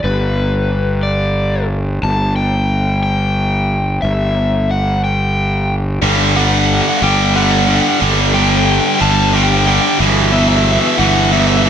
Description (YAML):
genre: post-rock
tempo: 60 BPM (dotted quarters)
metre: 6/8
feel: straight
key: G major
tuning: A4 = 441 Hz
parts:
  - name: overdriven electric guitar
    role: melody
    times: 0.0-11.7 s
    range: B4 to A5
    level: -18 LUFS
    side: left 3 dB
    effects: spring reverb, slapback echo
  - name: fuzz fingered electric bass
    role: bass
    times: 0.0-11.7 s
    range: G1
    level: -15 LUFS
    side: equal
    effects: overdrive
  - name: tight distorted guitar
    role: riff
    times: 6.0-11.7 s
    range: E2 to G3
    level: -13 LUFS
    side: right 1 dB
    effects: distortion
room: light reverb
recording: none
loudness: -12 LUFS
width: side -8 dB against mid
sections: 0.0-6.0 A section; 6.0-11.7 B section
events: build-up 6.0-11.7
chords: 0.0 N.C.; 6.0 G5; 10.0 Em/G